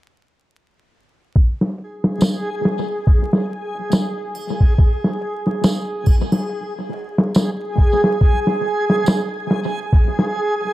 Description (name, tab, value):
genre	trip hop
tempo	70 BPM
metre	4/4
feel	swing 58% on 16ths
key	unclear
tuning	A4 = 440 Hz
part	backwards swelling texture	texture	1.9-10.7 s	Ab4	-23 LUFS	right 1 dB	built-in reverb
part	boom bap sampler-style drum kit	drums	1.4-10.7 s	hi-hat, kick drum, snare drum	-16 LUFS	equal	low-pass filter on kick, low-pass filter on hats, low-pass filter on snare, analog delay
part	tambourine and triangle	percussion	2.2-9.3 s	none	-36 LUFS	right 2 dB	analog delay
room	light reverb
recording	echo-heavy mix, vinyl crackle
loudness	-16 LUFS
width	side -16 dB against mid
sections	1.4-10.7 A section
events	none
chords	none